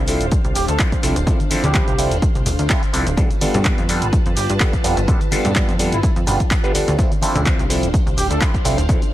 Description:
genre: filtered disco house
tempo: 126 BPM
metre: 4/4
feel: swing 54% on 16ths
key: G mixolydian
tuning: A4 = 442 Hz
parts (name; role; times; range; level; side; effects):
- overdriven clav; accompaniment; 0.0-9.0 s; F3 to D5; -23 LUFS; right 1 dB; phaser, sidechain pumping, low-pass filter
- string machine, full ensemble; sustained chords; 0.0-9.1 s; D4 to A5; -28 LUFS; equal; ensemble chorus, sidechain pumping, low-pass filter
- plucky analog bass; bass; 0.0-8.9 s; D1 to G2; -21 LUFS; equal; sidechain pumping, low-pass filter
- punchy analog drum machine; drums; 0.1-9.1 s; handclaps, hi-hat, shaker; -24 LUFS; equal; sidechain pumping on hats, sidechain pumping on perc
- tambourine and congas; percussion; 0.1-9.1 s; none; -30 LUFS; left 1 dB; none
- electronic kick drum; drums; 0.3-9.0 s; none; -18 LUFS; equal; overdrive
- warm horn section; melody; 0.6-8.4 s; E4 to A4; -26 LUFS; right 2 dB; sidechain pumping, low-pass filter
room: digital ambience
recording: none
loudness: -15 LUFS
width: side -14 dB against mid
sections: 0.0-9.1 A section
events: none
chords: 0.0 Dm7; 3.2 G9; 7.0 Dm7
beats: 0.32 0.80 | 1.27 1.75 2.22 2.70 | 3.18 3.65 4.13 4.61 | 5.08 5.56 6.03 6.51 | 6.99 7.46 7.94 8.41 | 8.89

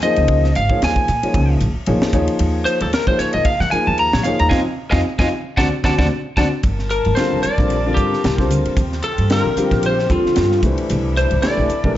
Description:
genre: electric jazz fusion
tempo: 113 BPM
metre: 4/4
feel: swing 55% on 16ths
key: Bb minor, G minor from 6.6 s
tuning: A4 = 440 Hz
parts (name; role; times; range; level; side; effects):
- lightly driven lead guitar; melody; 0.0-11.9 s; F4 to Bb5; -19 LUFS; left 1 dB; plate reverb
- warm concert grand piano; accompaniment; 0.0-12.0 s; D3 to Db5; -21 LUFS; left 1 dB; none
- crisp fusion drum kit; drums; 0.0-11.9 s; hi-hat, kick drum, ride cymbal, snare drum; -22 LUFS; equal; none
- upright bass; bass; 0.2-12.0 s; F1 to Eb3; -20 LUFS; equal; none
- warm chamber string section; sustained chords; 6.6-11.9 s; C3 to A5; -28 LUFS; left 2 dB; none
room: light reverb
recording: nothing above 7.7 kHz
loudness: -15 LUFS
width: side -13 dB against mid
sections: 0.0-6.6 A section; 6.6-12.0 B section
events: lead electric guitar solo 0.0-6.6; band accent 4.5-6.6; drum fill 6.1-6.6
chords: 0.0 Bbm9; 2.1 Ebsus2; 4.5 F7(no3); 5.6 D7; 6.6 Gm9; 8.8 Eb69; 10.6 C9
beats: | 0.29 0.82 1.35 1.87 | 2.40 2.93 3.46 3.99 | 4.52 5.05 5.58 6.11 | 6.64 7.17 7.70 8.23 | 8.77 9.30 9.83 10.36 | 10.89 11.42 11.96

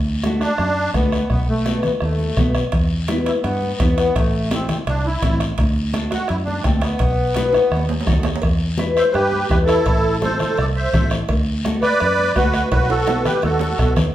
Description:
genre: latin, cumbia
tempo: 168 BPM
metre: 4/4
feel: straight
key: E minor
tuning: A4 = 441 Hz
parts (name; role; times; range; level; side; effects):
- fingered electric bass; bass; 0.0-14.1 s; A1 to G2; -22 LUFS; equal; none
- nylon-string guitar; accompaniment; 0.2-14.0 s; A3 to B4; -23 LUFS; left 3 dB; none
- bombo; percussion; 0.2-14.1 s; none; -23 LUFS; equal; none
- congas; percussion; 0.2-14.0 s; none; -27 LUFS; left 1 dB; none
- guiro; percussion; 0.2-14.1 s; none; -34 LUFS; left 4 dB; none
- musette accordion; melody; 0.4-13.9 s; A3 to E5; -20 LUFS; right 1 dB; none
- timbales and cowbell; percussion; 2.7-14.0 s; none; -31 LUFS; right 4 dB; none
room: wet large studio reverb, RT60 1.0 s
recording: band playing live in one room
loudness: -16 LUFS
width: side -13 dB against mid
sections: 0.0-8.4 A section; 8.4-14.1 A section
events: drum fill 7.5-8.4, 12.7-14.1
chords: 0.0 D; 1.3 B7; 2.7 Em; 4.2 Am; 5.6 D; 7.0 B7; 8.4 Em; 9.9 Am; 11.3 D; 12.7 B7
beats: 0.24 0.59 0.95 | 1.31 1.66 2.02 2.38 | 2.73 3.09 3.44 3.80 | 4.16 4.51 4.87 5.23 | 5.58 5.94 6.30 6.65 | 7.01 7.37 7.72 8.08 | 8.44 8.79 9.15 9.51 | 9.86 10.22 10.58 10.93 | 11.29 11.65 12.00 12.36 | 12.72 13.07 13.43 13.79 | 14.14

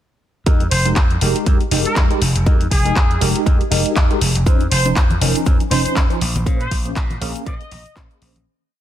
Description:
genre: filtered disco house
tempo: 120 BPM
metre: 4/4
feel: swing 56% on 16ths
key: F minor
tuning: A4 = 436 Hz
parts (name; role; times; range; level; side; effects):
- tine electric piano; accompaniment; 0.5-8.4 s; F3 to C5; -22 LUFS; right 1 dB; overdrive, medium stereo tremolo, phaser, sidechain pumping
- vintage slap bass; bass; 0.5-8.4 s; F1 to Bb2; -20 LUFS; equal; sidechain pumping
- electronic kick drum; drums; 0.5-8.1 s; none; -16 LUFS; equal; studio reverb
- house drum kit; drums; 0.5-8.4 s; handclaps, hi-hat; -23 LUFS; left 1 dB; sidechain pumping on hats, studio reverb
- warm trumpet section; melody; 0.7-8.0 s; Ab4 to Eb5; -25 LUFS; right 1 dB; sidechain pumping, dub echo
- tube shaker and congas; percussion; 4.5-8.4 s; none; -29 LUFS; left 2 dB; none
room: light reverb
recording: dense, heavily limited modern master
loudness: -14 LUFS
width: side -11 dB against mid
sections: 0.5-8.5 drop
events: drop 0.5-8.5; fade-out 5.8-8.5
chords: 0.5 Fm11; 4.5 Dbmaj9/F; 6.2 Bbm9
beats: | 0.47 0.96 1.47 1.97 | 2.46 2.96 3.46 3.96 | 4.46 4.96 5.46 5.96 | 6.46 6.96 7.46 7.96

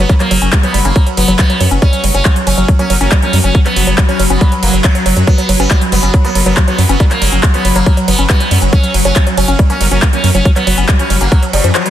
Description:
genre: psychedelic trance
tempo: 139 BPM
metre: 4/4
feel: straight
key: F# major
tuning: A4 = 440 Hz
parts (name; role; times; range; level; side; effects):
- sitar; melody; 0.0-11.9 s; F#3 to C#4; -18 LUFS; equal; phaser, sidechain pumping, tape echo
- metallic wobble bass; second line; 0.0-11.6 s; F#3 to A#3; -28 LUFS; right 4 dB; chorus, sidechain pumping, high-pass filter, dub echo
- swarming drone; sustained chords; 0.0-11.9 s; F#3; -19 LUFS; left 1 dB; built-in reverb, phaser, sidechain pumping
- woody wave-folded pluck; riff; 0.0-11.9 s; E#3 to C#4; -18 LUFS; right 1 dB; chorus, auto-pan, sidechain pumping, dub echo
- round analog bass; bass; 0.0-11.7 s; F#1 to F#2; -14 LUFS; equal; none
- big-room dance drum kit; drums; 0.1-11.9 s; handclaps, hi-hat, ride cymbal; -17 LUFS; equal; none
- electronic kick drum; drums; 0.1-11.4 s; none; -10 LUFS; equal; overdrive
room: little or no reverb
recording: dense, heavily limited modern master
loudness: -9 LUFS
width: side -11 dB against mid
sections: 0.0-11.9 A section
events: break 11.7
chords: 0.0 F#5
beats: | 0.10 0.53 0.96 1.39 | 1.82 2.25 2.68 3.12 | 3.55 3.98 4.41 4.84 | 5.27 5.71 6.14 6.57 | 7.00 7.43 7.86 8.30 | 8.73 9.16 9.59 10.02 | 10.45 10.89 11.32 11.75

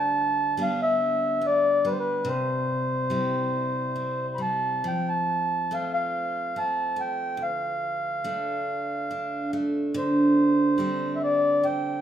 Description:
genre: celtic folk, Celtic slow air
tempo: 71 BPM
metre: 3/4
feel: rubato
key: unclear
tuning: A4 = 435 Hz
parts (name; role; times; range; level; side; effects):
- mellow accordion; melody; 0.0-12.0 s; B4 to B5; -25 LUFS; equal; none
- picked steel-string acoustic guitar; accompaniment; 0.0-12.0 s; D2 to F4; -28 LUFS; right 1 dB; none
room: moderate recital hall reverb, RT60 1.3 s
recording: minimal, uncompressed stereo recording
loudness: -23 LUFS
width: side -10 dB against mid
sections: 0.0-12.0 A section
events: none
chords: 0.0 G/D; 2.3 C; 4.9 F; 7.4 Dm; 10.0 Gsus4/D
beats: 0.60 1.44 | 2.27 3.12 3.97 | 4.85 5.72 6.57 | 7.41 8.26 9.12 | 9.96 10.80 11.63

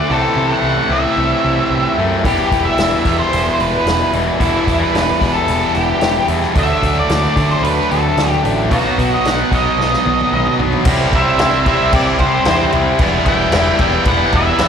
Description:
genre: classic rock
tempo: 112 BPM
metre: 4/4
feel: straight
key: E minor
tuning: A4 = 441 Hz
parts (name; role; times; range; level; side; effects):
- octave-fuzz lead guitar; melody; 0.0-14.7 s; E4 to G5; -18 LUFS; equal; distortion, slapback echo, tape echo
- distorted electric guitar; riff; 0.0-14.7 s; E2 to E4; -19 LUFS; left 11 dB; overdrive, slapback echo
- distorted electric guitar; riff; 0.0-14.7 s; B2 to E4; -19 LUFS; right 8 dB; overdrive, slapback echo
- growling picked electric bass; bass; 0.1-14.7 s; E1 to D3; -20 LUFS; equal; overdrive
- vintage drum kit; drums; 2.2-14.7 s; crash cymbal, hi-hat, kick drum, snare drum, toms; -20 LUFS; equal; none
- octave-fuzz lead guitar; second line; 11.2-14.7 s; G4 to E5; -24 LUFS; right 2 dB; distortion, slapback echo
room: small room ambience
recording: live gig heard through the venue's PA, recital hall reverb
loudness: -12 LUFS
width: side -7 dB against mid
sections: 0.0-10.9 A section; 10.9-14.7 B section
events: drum fill 9.8-10.9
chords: 0.1 Am/C; 2.2 Em; 6.6 D; 8.7 B; 10.9 C; 13.0 Em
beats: | 0.09 0.63 1.17 1.71 | 2.25 2.79 3.33 3.86 | 4.40 4.94 5.48 6.02 | 6.56 7.09 7.63 8.17 | 8.71 9.25 9.78 10.32 | 10.86 11.39 11.93 12.46 | 13.00 13.53 14.07 14.60

